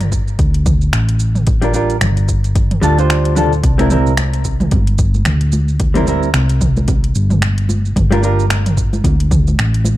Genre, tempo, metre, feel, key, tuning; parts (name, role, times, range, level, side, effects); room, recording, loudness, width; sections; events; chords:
sunset chillout; 111 BPM; 4/4; swing 58% on 16ths; G dorian; A4 = 440 Hz
hollow-body short-scale fingered electric bass; bass; 0.0-10.0 s; G1 to D2; -15 LUFS; equal; tube saturation
deep house drum kit; drums; 0.0-10.0 s; finger snaps, hi-hat, shaker, toms; -21 LUFS; right 1 dB; overdrive
electronic kick drum; drums; 0.1-9.4 s; -17 LUFS; equal; overdrive
vintage hollow-body jazz guitar; accompaniment; 1.6-8.4 s; G3 to C5; -18 LUFS; moving between left 3 dB and right 3 dB; auto-pan, low-pass filter, ping-pong delay
congas; percussion; 3.8-10.0 s; -24 LUFS; right 1 dB
little or no reverb; dark, warm production; -12 LUFS; side -15 dB against mid
0.0-10.0 A section
0.0 G7(no3); 3.6 C7; 8.0 Gm7